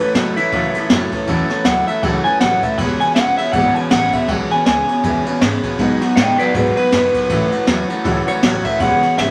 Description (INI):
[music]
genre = rockabilly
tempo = 160 BPM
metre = 4/4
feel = swing 59% on 8ths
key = E major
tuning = A4 = 440 Hz
[part]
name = electric guitar through a small old amp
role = melody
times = 0.0-9.3 s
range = E4 to G#5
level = -20 LUFS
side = equal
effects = none
[part]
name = picked steel-string acoustic guitar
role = accompaniment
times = 0.0-9.3 s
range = A2 to A4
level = -23 LUFS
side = equal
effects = none
[part]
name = electric guitar through a small old amp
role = riff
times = 0.0-9.3 s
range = E2 to G#3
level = -26 LUFS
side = equal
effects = none
[part]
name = upright bass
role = bass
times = 0.0-9.3 s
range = E1 to C#3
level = -27 LUFS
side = equal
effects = none
[part]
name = jazz brush drum kit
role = drums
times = 0.1-9.3 s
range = kick drum, ride cymbal, snare drum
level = -22 LUFS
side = equal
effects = none
[sound]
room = moderate studio reverb, RT60 0.5 s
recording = vinyl crackle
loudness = -16 LUFS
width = mono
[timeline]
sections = 0.0-9.3 A section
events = clean electric guitar solo 0.0-9.3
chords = 0.0 A6; 2.8 E6; 5.8 B6; 7.3 A6; 8.8 E6